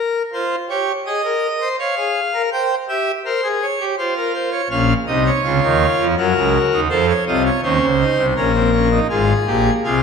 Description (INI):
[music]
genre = classical, baroque-style 3-part fugue for pipe organ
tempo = 82 BPM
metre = 3/4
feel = straight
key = Bb minor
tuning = A4 = 439 Hz
[part]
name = pipe organ, full organ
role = solo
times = 0.0-10.0 s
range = Ab1 to G5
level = -15 LUFS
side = equal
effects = none
[sound]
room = wet recital hall reverb, RT60 1.4 s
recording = none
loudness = -15 LUFS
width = side -6 dB against mid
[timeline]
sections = 0.0-10.0 A section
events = none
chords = 0.3 Fm; 1.8 Bbm; 2.5 C; 4.0 F5; 4.7 Bbm; 6.2 Ebm; 6.9 F; 8.4 Bbm; 9.1 Fm/Ab